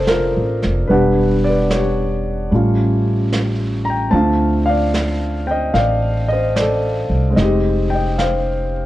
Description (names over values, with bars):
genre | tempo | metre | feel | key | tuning
jazz ballad | 74 BPM | 4/4 | swing 66% on 8ths | unclear | A4 = 440 Hz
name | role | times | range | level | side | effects
warm grand piano | accompaniment | 0.0-8.9 s | D3 to Bb5 | -17 LUFS | equal | none
upright bass | bass | 0.0-8.9 s | E1 to D2 | -19 LUFS | equal | none
vintage brush drum kit | drums | 0.1-8.9 s | brushed snare drum, hi-hat, snare drum | -26 LUFS | right 2 dB | none
room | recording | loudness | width
light reverb | worn, warbling old tape, cassette tape, warbly pitch drift | -15 LUFS | side -15 dB against mid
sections
0.0-8.9 A section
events
none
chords
0.0 Bbmaj7; 0.9 Em9; 2.5 Aaug7; 4.1 Dm7; 7.4 Fm9